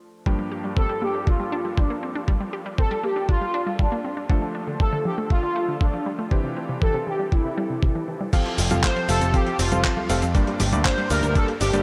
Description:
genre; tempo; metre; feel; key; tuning
italo disco; 119 BPM; 4/4; straight; F major; A4 = 440 Hz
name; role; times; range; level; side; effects
warm electric grand piano; stabs; 0.0-11.8 s; G2 to F5; -32 LUFS; equal; tape echo
unison pluck; arpeggios; 0.3-11.8 s; C3 to G4; -33 LUFS; equal; tape echo
electronic kick drum; drums; 0.3-11.5 s; none; -23 LUFS; equal; none
analog synth brass; melody; 0.8-11.8 s; D4 to C5; -29 LUFS; equal; chorus, tape echo
dusty soul sampler-style drum kit; drums; 8.3-11.8 s; cabasa, congas, crash cymbal, handclaps, hi-hat; -29 LUFS; equal; none
picked electric bass with an envelope filter; bass; 8.6-11.8 s; F1 to F2; -26 LUFS; equal; none
room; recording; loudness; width
moderate huge ambient reverb, RT60 9.0 s; dreamy mix soaked in reverb; -23 LUFS; mono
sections
0.0-8.3 A section; 8.3-11.8 B section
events
none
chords
0.3 Gm7; 4.3 Dm; 6.3 Cadd9; 8.3 Fadd9; 10.3 Gm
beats
| 0.26 0.77 1.27 1.78 | 2.28 2.78 3.29 3.79 | 4.30 4.80 5.30 5.81 | 6.31 6.82 7.32 7.83 | 8.33 8.84 9.34 9.84 | 10.35 10.85 11.36

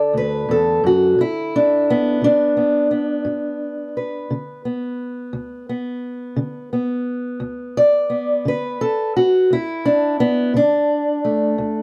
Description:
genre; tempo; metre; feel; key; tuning
acoustic country blues, solo or duo; 58 BPM (dotted quarters); 12/8; straight; unclear; A4 = 439 Hz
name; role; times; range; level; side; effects
fingerpicked steel-string acoustic guitar; solo; 0.0-11.8 s; D2 to D5; -19 LUFS; equal; none
room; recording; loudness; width
light reverb; close, detailed microphones; -19 LUFS; mono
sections
0.0-11.8 A section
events
none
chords
0.0 D; 1.2 G; 9.5 D5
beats
0.14 | 1.18 2.22 3.26 4.30 | 5.34 6.38 7.42 8.46 | 9.50 10.54 11.59

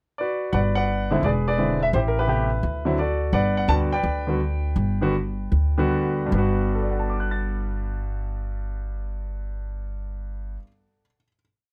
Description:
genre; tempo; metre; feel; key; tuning
jazz piano trio; 145-171 BPM; 4/4; swing 66% on 8ths; G major; A4 = 442 Hz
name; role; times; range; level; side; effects
warm concert grand piano; melody; 0.2-11.4 s; G2 to A6; -26 LUFS; equal; none
upright bass; bass; 0.5-10.6 s; E1 to D2; -27 LUFS; equal; none
room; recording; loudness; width
light reverb; close, detailed microphones; -24 LUFS; mono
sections
0.0-0.5 pickup bar; 0.5-6.3 A section; 6.3-9.6 final chord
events
slowing down 3.3-6.3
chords
0.0 Bm/F#; 0.5 Gmaj7; 1.2 E7b13; 1.9 Am9; 2.6 Dadd9; 3.3 Gmaj7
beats
0.18 | 0.53 0.88 1.23 1.58 | 1.93 2.28 2.63 2.98 | 3.33 3.69 4.04 4.40 | 4.77 5.14 5.53 5.92 | 6.33 6.75 7.16 7.57 | 7.99 8.40 8.82 9.23

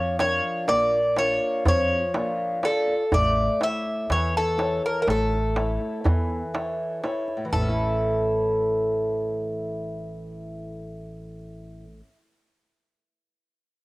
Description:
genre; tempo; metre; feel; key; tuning
greek folk, Greek bouzouki band; 123 BPM (eighths); 9/8; straight; unclear; A4 = 439 Hz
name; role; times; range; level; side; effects
Greek bouzouki; melody; 0.0-12.0 s; A4 to E5; -24 LUFS; equal; cassette tape
fingerpicked acoustic archtop guitar; accompaniment; 0.0-12.2 s; A2 to D5; -29 LUFS; left 1 dB; cassette tape
upright bass; bass; 0.0-12.0 s; A1 to F2; -30 LUFS; equal; none
darbuka; percussion; 0.2-8.0 s; none; -26 LUFS; right 1 dB; none
room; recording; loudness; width
light reverb; home recording on cassette; -22 LUFS; side -21 dB against mid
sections
0.0-7.5 A section; 7.5-11.9 B section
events
none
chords
0.0 Bb; 3.1 A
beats
0.19 0.68 1.17 1.66 2.15 2.64 | 3.13 3.62 4.10 4.59 5.08 5.57 6.06 6.55 7.04 | 7.53 8.02 8.51 9.00 9.49 9.98 10.47 10.96 11.45

